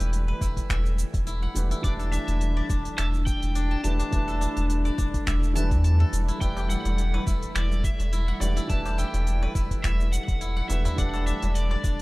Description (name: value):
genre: organic downtempo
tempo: 105 BPM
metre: 4/4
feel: swing 55% on 16ths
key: E minor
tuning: A4 = 440 Hz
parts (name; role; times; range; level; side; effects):
- overdriven slide guitar; melody; 0.0-12.0 s; D5 to A5; -36 LUFS; equal; tape echo
- felt-muted upright piano; accompaniment; 0.0-12.0 s; E3 to B4; -36 LUFS; right 2 dB; sidechain pumping
- granular cloud pad; sustained chords; 0.0-12.0 s; G3 to E5; -38 LUFS; left 1 dB; built-in reverb, sidechain pumping
- steel-string zither; arpeggios; 0.0-12.0 s; D4 to A5; -33 LUFS; left 2 dB; tape echo
- warm sub bass; bass; 0.0-12.0 s; E1 to E2; -24 LUFS; equal; sidechain pumping
- organic electronic drum kit; drums; 0.0-12.0 s; finger snaps, hi-hat, shaker; -35 LUFS; right 1 dB; none
- electronic kick drum; drums; 0.4-12.0 s; none; -28 LUFS; equal; overdrive
- darbuka; percussion; 6.6-11.8 s; none; -37 LUFS; equal; none
room: little or no reverb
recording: rough home demo mix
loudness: -23 LUFS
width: side -21 dB against mid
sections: 0.0-12.0 A section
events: none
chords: 0.0 Emadd9